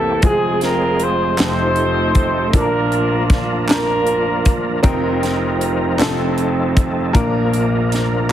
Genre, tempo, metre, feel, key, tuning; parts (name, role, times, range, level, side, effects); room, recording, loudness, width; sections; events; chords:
slow gospel; 52 BPM (dotted quarters); 6/8; straight; Bb major; A4 = 440 Hz
clear horn section; melody; 0.0-4.8 s; C4 to C5; -19 LUFS; equal
clear grand piano; accompaniment; 0.0-8.3 s; F1 to Bb4; -19 LUFS; left 1 dB
overdriven tonewheel organ; sustained chords; 0.0-8.3 s; E3 to Bb4; -22 LUFS; right 3 dB; slow rotary speaker, chorus vibrato
crisp fusion drum kit; drums; 0.2-8.1 s; hi-hat, kick drum, snare drum; -18 LUFS; equal
group handclap; percussion; 1.4-8.3 s; -27 LUFS; right 2 dB
light reverb, small room reverb; heavily compressed radio sound; -14 LUFS; side -11 dB against mid
0.0-8.3 A section
0.2 Fm; 1.4 F9; 2.5 Bb; 4.8 F7sus4; 6.0 F7; 7.1 Bb